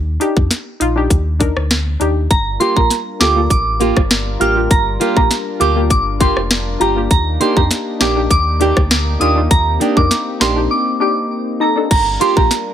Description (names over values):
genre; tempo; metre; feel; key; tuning
dancehall; 100 BPM; 4/4; straight; G minor; A4 = 439 Hz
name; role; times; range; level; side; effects
sub bass with octave; bass; 0.0-12.5 s; F1 to F2; -19 LUFS; equal; none
glassy wavetable pluck; accompaniment; 0.2-12.5 s; Bb3 to Bb4; -20 LUFS; left 4 dB; chorus
island pop drum kit; drums; 0.2-12.7 s; crash cymbal, hi-hat, kick drum, rim click, snare drum; -16 LUFS; equal; none
soft synth bell; melody; 2.3-12.5 s; Bb5 to F6; -18 LUFS; right 2 dB; chorus, phaser, digital delay
warm analog pad; sustained chords; 2.3-12.7 s; G3 to Bb4; -25 LUFS; left 2 dB; chorus, sidechain pumping
flamenco guitar; arpeggios; 2.6-12.4 s; Bb3 to G4; -19 LUFS; right 7 dB; none
room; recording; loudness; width
light reverb; none; -12 LUFS; side -10 dB against mid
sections
0.0-2.3 A section; 2.3-11.9 B section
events
break 10.7-11.9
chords
0.0 Ebmaj7; 2.3 Gm7; 7.1 Ebmaj7; 11.9 Gm7